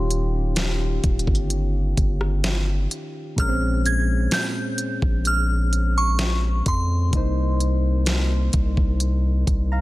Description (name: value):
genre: contemporary R&B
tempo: 64 BPM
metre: 4/4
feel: straight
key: Bb dorian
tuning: A4 = 437 Hz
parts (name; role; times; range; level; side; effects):
- glassy synth bell; melody; 0.0-8.5 s; C6 to Ab6; -27 LUFS; right 1 dB; chorus, tape echo
- soft electric-piano-like synth keys; accompaniment; 0.0-9.8 s; Bb2 to Bb5; -28 LUFS; left 1 dB; chorus
- long sustained 808-style bass; bass; 0.0-9.8 s; Eb1 to F2; -21 LUFS; equal; none
- smooth R&B drum kit; drums; 0.1-9.7 s; hi-hat, kick drum, rim click, snare drum; -24 LUFS; equal; none
room: digital ambience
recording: dense, heavily limited modern master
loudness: -19 LUFS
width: side -18 dB against mid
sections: 0.0-9.8 A section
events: none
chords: 0.0 Eb9; 3.4 Bbm9; 7.1 Cm7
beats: 0.57 1.50 2.44 | 3.38 4.32 5.25 6.19 | 7.13 8.07 9.01